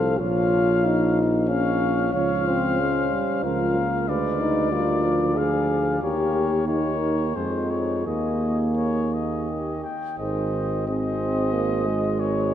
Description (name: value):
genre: classical, brass quintet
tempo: 83-94 BPM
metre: 3/4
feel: rubato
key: Ab major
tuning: A4 = 441 Hz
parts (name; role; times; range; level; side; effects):
- warm trumpet; melody; 0.0-12.5 s; C5 to G5; -29 LUFS; left 6 dB; none
- mellow flugelhorn; second line; 0.0-12.5 s; G4 to Db5; -30 LUFS; right 6 dB; none
- mellow French horn; accompaniment; 0.0-12.5 s; Ab3 to Bb4; -26 LUFS; left 2 dB; none
- warm trombone; accompaniment; 0.0-12.5 s; Eb3 to C4; -30 LUFS; right 3 dB; none
- warm bass trombone; bass; 0.0-12.5 s; Ab1 to F2; -25 LUFS; right 1 dB; none
room: wet cathedral reverb, RT60 5.6 s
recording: none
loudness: -21 LUFS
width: side -10 dB against mid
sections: 0.0-10.2 A section; 10.2-12.5 B section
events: none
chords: 0.2 Bbm; 2.1 Db; 3.4 Bbm/Db; 4.1 Ddim7; 6.0 Eb7; 7.4 Fm; 8.1 Ebsus4; 10.2 Ab